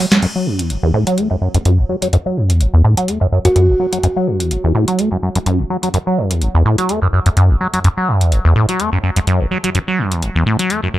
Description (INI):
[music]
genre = acid house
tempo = 126 BPM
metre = 4/4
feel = swing 55% on 16ths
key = F# minor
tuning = A4 = 440 Hz
[part]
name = liquid acid bass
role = riff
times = 0.0-11.0 s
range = F#1 to A3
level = -13 LUFS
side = equal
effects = phaser, overdrive, tape echo
[part]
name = booming analog drum machine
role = drums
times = 0.1-10.8 s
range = crash cymbal, hi-hat, snare drum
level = -20 LUFS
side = equal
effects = none
[part]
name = buzzing kalimba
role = melody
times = 3.5-3.6 s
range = F#4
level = -20 LUFS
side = right 1 dB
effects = tape echo
[sound]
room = light reverb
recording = dry, gritty hardware recording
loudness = -13 LUFS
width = side -14 dB against mid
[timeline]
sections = 0.2-11.0 A section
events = drum fill 0.0; band accent 0.1; filter sweep on acid bass 0.2-11.0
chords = none